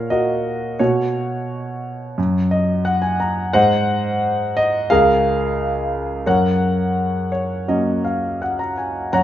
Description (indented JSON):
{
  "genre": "classical, lyrical solo piano",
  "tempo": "87 BPM",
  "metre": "4/4",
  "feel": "rubato",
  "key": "F# major",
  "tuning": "A4 = 439 Hz",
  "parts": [
    { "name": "warm concert grand piano", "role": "solo", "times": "0.0-9.2 s", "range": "C#2 to A#5", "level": "-17 LUFS", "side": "equal", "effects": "none" }
  ],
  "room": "moderate recital hall reverb, RT60 1.4 s",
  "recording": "nothing above 7.5 kHz",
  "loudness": "-17 LUFS",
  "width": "side -12 dB against mid",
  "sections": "0.0-9.1 A section",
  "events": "grand piano fill 2.2-3.5, 7.0-9.1",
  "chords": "0.0 F#/A#; 0.8 Bsus2; 2.2 N.C.; 3.5 G#7; 4.9 C#6; 6.3 F#",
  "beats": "0.09 | 0.79 1.49 2.18 2.85 | 3.54 4.21 4.90 5.58 | 6.26 6.96 7.67 8.40 | 9.12"
}